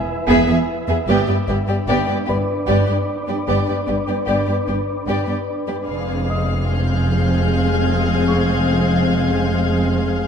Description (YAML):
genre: cinematic, suspense film score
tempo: 75 BPM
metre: 3/4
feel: straight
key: unclear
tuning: A4 = 442 Hz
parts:
  - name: wind-like tuned noise texture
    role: sustained chords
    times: 0.0-10.3 s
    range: C4 to F5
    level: -25 LUFS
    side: equal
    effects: built-in reverb
  - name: warm chamber violin section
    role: texture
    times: 0.0-0.6, 5.9-10.2 s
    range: G#5 to Ab6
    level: -32 LUFS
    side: left 5 dB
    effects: none
  - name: warm concert grand piano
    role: texture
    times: 0.0-10.3 s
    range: B4 to Eb6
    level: -32 LUFS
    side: left 2 dB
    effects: none
  - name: warm chamber violin section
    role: melody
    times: 0.3-10.3 s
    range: D5 to F5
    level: -27 LUFS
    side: left 4 dB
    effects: none
  - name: warm chamber violin section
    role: second line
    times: 0.3-10.3 s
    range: G4 to G#4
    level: -26 LUFS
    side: left 1 dB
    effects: none
  - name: warm chamber viola section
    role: accompaniment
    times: 0.3-10.3 s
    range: B3 to C4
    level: -25 LUFS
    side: right 1 dB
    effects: none
  - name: dark chamber cello section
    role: bass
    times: 0.3-10.3 s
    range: E2 to G2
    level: -23 LUFS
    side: right 1 dB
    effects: none
  - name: dark symphonic double bass section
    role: bass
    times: 0.3-10.3 s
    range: E1 to G1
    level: -22 LUFS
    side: right 1 dB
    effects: none
  - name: warm French horn section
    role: sustained chords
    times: 5.9-10.3 s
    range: Ab3 to C4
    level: -24 LUFS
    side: left 4 dB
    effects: none
room: wet scoring stage reverb, RT60 1.6 s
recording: dark, warm production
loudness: -16 LUFS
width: side -7 dB against mid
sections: 0.0-5.9 A section; 5.9-10.3 B section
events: none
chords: 0.0 E; 1.1 G; 5.9 Fm